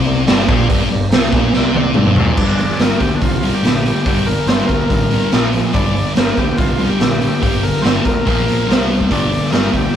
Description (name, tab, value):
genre	garage rock duo or trio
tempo	143 BPM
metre	4/4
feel	straight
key	G minor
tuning	A4 = 440 Hz
part	thick fuzz guitar	riff	0.0-10.0 s	G2 to C4	-18 LUFS	equal	distortion
part	growling picked electric bass	bass	0.0-9.9 s	G1 to D2	-22 LUFS	equal	overdrive
part	combo organ	sustained chords	0.1-10.0 s	Bb3 to D5	-29 LUFS	right 1 dB	none
part	raw garage drum kit	drums	0.3-9.8 s	crash cymbal, hi-hat, kick drum, snare drum, toms	-15 LUFS	equal	none
part	overdriven combo organ	melody	2.4-10.0 s	D4 to D5	-22 LUFS	left 1 dB	none
room	light reverb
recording	rough rehearsal-room recording, warm saturation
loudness	-12 LUFS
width	side -9 dB against mid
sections	0.0-2.4 A section; 2.4-10.0 B section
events	drum fill 1.5-2.4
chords	0.0 Gm; 5.3 Bb5; 5.7 Gm; 8.3 Bb5; 8.7 C5; 9.1 Gm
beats	0.27 | 0.69 1.11 1.53 1.95 | 2.37 2.79 3.21 3.63 | 4.06 4.48 4.90 5.32 | 5.74 6.16 6.58 7.00 | 7.42 7.84 8.26 8.68 | 9.10 9.52 9.94